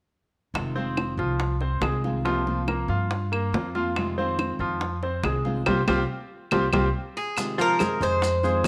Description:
latin, Cuban son and guajira; 141 BPM; 4/4; straight; F minor; A4 = 440 Hz
nylon-string guitar; accompaniment; 0.5-8.7 s; C3 to F4; -33 LUFS; equal
upright bass; bass; 0.5-8.7 s; F1 to G2; -31 LUFS; equal
bongos; percussion; 0.6-8.7 s; -33 LUFS; equal
claves; percussion; 0.6-8.7 s; -34 LUFS; equal
bright grand piano; arpeggios; 0.8-8.7 s; F3 to F5; -30 LUFS; equal
Cuban tres; melody; 7.2-8.7 s; Ab4 to C5; -26 LUFS; equal
congas; percussion; 7.4-8.7 s; -34 LUFS; equal
maracas; percussion; 7.4-8.7 s; -40 LUFS; equal
moderate echo chamber reverb, RT60 1.4 s, studio ambience; -25 LUFS; mono
0.5-7.4 A section; 7.4-8.7 B section
band accent 5.7-7.4; drum fill 7.2
0.5 Fm7; 2.3 C7sus4; 4.0 Fm7; 5.7 C7sus4; 7.4 Fm7

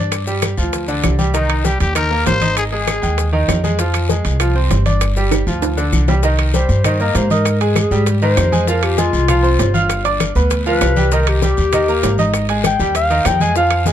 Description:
latin, salsa; 196 BPM; 4/4; straight; C minor; A4 = 438 Hz
bright concert grand piano; accompaniment; 0.0-13.9 s; D3 to F6; -20 LUFS; right 2 dB
upright bass; bass; 0.0-13.9 s; G1 to Ab2; -17 LUFS; equal
bongos; percussion; 0.1-13.9 s; -27 LUFS; left 9 dB
claves; percussion; 0.1-13.9 s; -29 LUFS; equal
congas; percussion; 0.1-13.9 s; -24 LUFS; left 2 dB
guiro; percussion; 0.1-13.9 s; -30 LUFS; left 5 dB
maracas; percussion; 0.1-13.9 s; -30 LUFS; left 7 dB
timbales; percussion; 0.1-13.9 s; -24 LUFS; right 12 dB
growling trumpet; melody; 1.4-3.3 s; Eb4 to C5; -20 LUFS; left 3 dB
mellow clarinet; melody; 6.5-13.9 s; F4 to Ab5; -18 LUFS; left 3 dB
little or no reverb; close, detailed microphones; -13 LUFS; side -10 dB against mid
0.0-6.2 A section; 6.2-13.9 B section
drum fill 5.3-6.2; clarinet solo 6.2-13.9
0.1 G5; 1.3 Cm7; 2.6 Ab5; 3.8 Fm; 5.0 G5; 6.2 Cm7; 7.5 Abmaj7; 8.7 Fmadd9; 9.9 G7; 11.1 Cm7; 12.3 Ab5

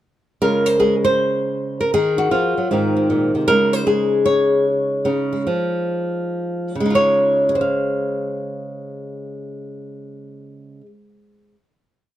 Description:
solo jazz; 133-157 BPM; 4/4; swing 65% on 8ths; Db major; A4 = 440 Hz
flamenco guitar; solo; 0.4-11.7 s; Ab2 to F5; -17 LUFS; equal
light reverb; -16 LUFS; side -12 dB against mid
0.4-6.7 A section; 6.7-10.3 final chord
slowing down 3.5-6.7
0.4 Dbmaj7; 1.9 Ebmadd9; 2.7 Abadd9; 3.5 Dbmaj9

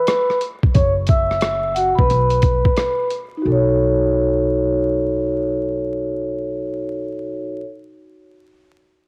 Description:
hip hop, jazz-hop; 89 BPM; 4/4; swing 64% on 16ths; A4 = 440 Hz
vibraphone with soft mallets; accompaniment; 0.0-7.6 s; D#4 to E6; -21 LUFS; equal; low-pass filter, cassette tape
boom bap sampler-style drum kit; drums; 0.1-3.3 s; hi-hat, kick drum, rim click; -20 LUFS; equal; cassette tape
upright bass; bass; 0.8-7.6 s; E1 to B1; -26 LUFS; equal
light reverb, studio ambience; home recording on cassette, vinyl crackle; -19 LUFS; mono
0.0-3.5 A section; 3.5-6.1 B section
vibraphone solo 0.0-3.5; filter sweep on vibraphone 0.0-3.5
0.0 N.C.; 0.8 F#5; 2.1 N.C.; 3.5 B9

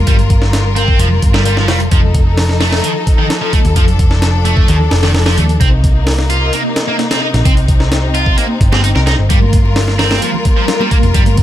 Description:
breakbeat, breaks; 130 BPM; 4/4; straight; G minor; A4 = 440 Hz
rich symphonic string section; sustained chords; 0.0-11.4 s; C3 to Bb4; -18 LUFS; left 3 dB; sidechain pumping
hollow-body short-scale picked electric bass; bass; 0.0-11.4 s; F1 to Eb2; -13 LUFS; equal
high-gain distorted guitar; riff; 0.1-11.2 s; Eb3 to Bb4; -18 LUFS; right 1 dB; distortion, ping-pong delay
breakbeat sampler-style drum kit; drums; 0.1-11.4 s; hi-hat, kick drum, snare drum; -13 LUFS; equal
congas; percussion; 9.3-11.4 s; -23 LUFS; right 5 dB
digital ambience; -10 LUFS; side -12 dB against mid
0.0-11.4 A section
0.0 Gm7; 1.9 F7; 5.6 Cm7; 9.3 Gm7

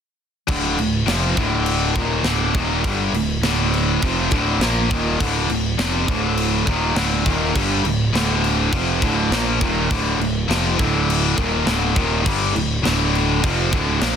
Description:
heavy metal; 102 BPM; 4/4; straight; A4 = 436 Hz
distorted electric guitar; riff; 0.5-14.2 s; D2 to Bb3; -24 LUFS; right 9 dB; distortion
raw garage guitar; riff; 0.5-14.2 s; D2 to Bb3; -25 LUFS; equal; overdrive
tight distorted guitar; riff; 0.5-14.2 s; D2 to Bb3; -23 LUFS; left 10 dB; distortion
fuzz picked electric bass; bass; 0.5-14.2 s; D1 to Bb1; -24 LUFS; equal; overdrive
tight metal drum kit; drums; 0.5-14.2 s; crash cymbal, kick drum, snare drum; -24 LUFS; equal; soft clipping on kick
studio reverb; dense, heavily limited modern master; -17 LUFS; side -8 dB against mid
0.5-14.2 A section
0.5 Dm

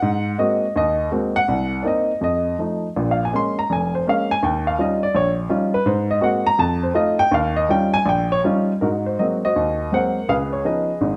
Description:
solo jazz; 164 BPM; 4/4; swing 66% on 8ths, rubato; Ab major; A4 = 438 Hz
warm baby grand piano; solo; 0.0-11.2 s; F1 to C6; -20 LUFS; equal
moderate large studio reverb, RT60 1.2 s; dark, warm production; -20 LUFS; mono
0.0-8.8 A section; 8.8-11.2 B section
grand piano solo 0.0-8.8
0.0 Ab9; 1.5 Cm7; 2.2 F7; 3.0 Bbm7; 4.4 Eb9; 5.9 Ab9; 6.6 F7; 7.3 Eb9; 8.8 Ab9; 10.3 Db9

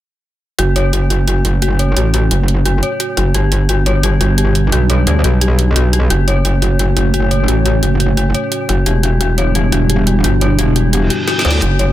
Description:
dark technical drum and bass; 174 BPM; 4/4; straight; F# phrygian; A4 = 440 Hz
dark analog pad; sustained chords; 1.3-11.9 s; G3 to C#5; -20 LUFS; right 1 dB; chorus
dark detuned synth bell; arpeggios; 0.6-11.8 s; F#4 to C#5; -19 LUFS; left 3 dB; chorus, low-pass filter, ping-pong delay
metallic wobble bass; bass; 0.6-11.9 s; E1 to D2; -13 LUFS; equal; chorus, overdrive
drum and bass drum kit; drums; 0.6-11.9 s; hi-hat, snare drum; -21 LUFS; right 1 dB
reverse cymbal; sound effects; 11.0-11.6 s; -21 LUFS; right 1 dB
digital ambience; -11 LUFS; side -13 dB against mid
0.6-11.9 A section
reverse cymbal 11.0-11.6; drum fill 11.3-11.6
0.6 F#m; 3.3 G; 6.1 F#m; 8.9 Em7

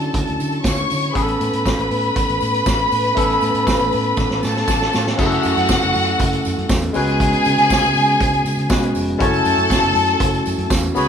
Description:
disco; 119 BPM; 4/4; straight; F# minor; A4 = 439 Hz
warm studio string section; second line; 0.0-11.1 s; F#4 to C#6; -19 LUFS; left 1 dB
barky tine electric piano; accompaniment; 0.0-11.1 s; F#3 to C#5; -21 LUFS; left 1 dB; overdrive
fingered electric bass; bass; 0.0-11.1 s; E#1 to D3; -24 LUFS; equal
vintage drum kit; drums; 0.0-11.1 s; crash cymbal, hi-hat, kick drum, snare drum; -22 LUFS; right 1 dB
tambourine; percussion; 0.1-11.1 s; -34 LUFS; right 5 dB
moderate large studio reverb, RT60 1.3 s; band playing live in one room; -15 LUFS; side -8 dB against mid
0.0-5.2 A section; 5.2-11.1 B section
drum fill 4.2-5.2
0.0 Dmaj7; 1.1 Aadd9; 5.2 F#m7; 6.9 C#7sus4; 9.2 F#m7

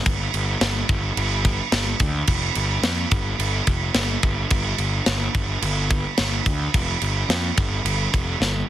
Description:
hard rock; 108 BPM; 4/4; straight; A4 = 440 Hz
fuzz picked electric bass; bass; 0.1-8.6 s; F1 to F2; -24 LUFS; equal; overdrive
tight metal drum kit; drums; 0.1-8.5 s; crash cymbal, kick drum, snare drum; -21 LUFS; right 1 dB; soft clipping on kick
little or no reverb; dense, heavily limited modern master; -20 LUFS; side -12 dB against mid
0.0-8.7 A section
drum fill 8.4

